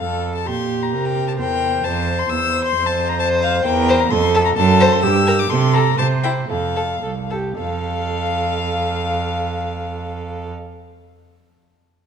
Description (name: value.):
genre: quick classical-period movement for string quartet.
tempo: 108-134 BPM.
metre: 2/4.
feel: rubato.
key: F major.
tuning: A4 = 440 Hz.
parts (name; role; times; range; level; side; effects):
rich violin; melody; 0.0-10.5 s; F5 to E6; -22 LUFS; left 7 dB; none.
rich violin; second line; 0.0-10.5 s; E4 to F5; -24 LUFS; left 3 dB; none.
warm viola; accompaniment; 0.0-10.5 s; G4 to C5; -24 LUFS; right 1 dB; none.
rich cello; bass; 0.0-10.5 s; C2 to C3; -21 LUFS; right 5 dB; none.
room: moderate concert hall reverb, RT60 2.2 s.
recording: dark, warm production.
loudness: -16 LUFS.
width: side -7 dB against mid.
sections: 0.0-7.6 A section; 7.6-9.7 B section.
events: slowing down 5.0-7.6.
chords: 0.0 F; 0.5 Gm/Bb; 0.9 C7; 1.8 F; 2.3 C/E; 2.7 F5; 3.7 C/E; 4.1 F; 4.6 F#dim; 5.0 Gm; 5.5 Am/C; 6.0 C; 6.5 F.